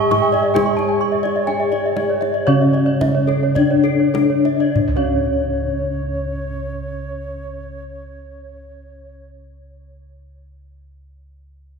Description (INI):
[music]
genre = Balinese gamelan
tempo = 48-70 BPM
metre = 4/4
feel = straight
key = C# pelog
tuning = A4 = 440 Hz
[part]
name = gamelan-type bronze metallophone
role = melody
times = 0.0-9.5 s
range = C#4 to G#4-45c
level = -19 LUFS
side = left 4 dB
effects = none
[part]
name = reedy bansuri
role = second line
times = 0.0-9.3 s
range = C#5 to D#5+48c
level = -28 LUFS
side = right 5 dB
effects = none
[part]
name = gamelan-type bronze metallophone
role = accompaniment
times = 0.0-9.5 s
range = C#3 to G#3-45c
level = -28 LUFS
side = right 6 dB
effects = none
[part]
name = gamelan-type bronze metallophone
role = arpeggios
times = 0.0-9.5 s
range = C#5 to C#6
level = -26 LUFS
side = right 5 dB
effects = none
[part]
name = gamelan-type bossed gongs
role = bass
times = 0.0-9.4 s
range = C#2 to G#4-45c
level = -24 LUFS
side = right 1 dB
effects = none
[part]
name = gamelan-type bronze metallophone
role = arpeggios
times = 0.1-9.5 s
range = A4-40c to C#6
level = -23 LUFS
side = left 2 dB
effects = none
[part]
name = kendang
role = percussion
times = 0.1-5.3 s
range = none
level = -28 LUFS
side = left 2 dB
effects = none
[sound]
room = wet church reverb, RT60 3.7 s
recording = recorded in a church or concert hall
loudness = -16 LUFS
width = side -5 dB against mid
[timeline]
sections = 0.0-4.8 A section; 4.8-9.8 B section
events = slowing down 0.0-4.8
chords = none